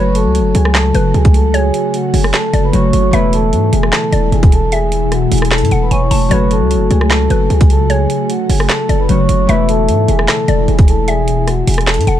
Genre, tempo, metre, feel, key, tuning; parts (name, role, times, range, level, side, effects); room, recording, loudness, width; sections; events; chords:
hip hop, trap; 151 BPM; 4/4; half-time; F# minor; A4 = 439 Hz
vibraphone with soft mallets; melody; 0.0-12.2 s; F#4 to C#6; -18 LUFS; equal
mallet-like synth pluck; second line; 0.0-12.2 s; B4 to A5; -24 LUFS; left 1 dB; chorus, digital delay
Celtic harp; accompaniment; 0.0-12.2 s; E3 to F#4; -19 LUFS; left 4 dB
ethereal airy pad; sustained chords; 0.8-12.2 s; B2 to F#4; -20 LUFS; equal; ensemble chorus, built-in reverb
hard-hitting 808-style bass; bass; 0.0-12.2 s; E1 to G#2; -14 LUFS; equal
trap drum kit; drums; 0.1-12.2 s; handclaps, hi-hat, kick drum, rim click, snare drum; -14 LUFS; equal
little or no reverb; dark, warm production; -10 LUFS; side -11 dB against mid
0.0-12.2 A section
0.0 F#m; 3.1 Esus4; 6.3 F#m; 9.5 Esus4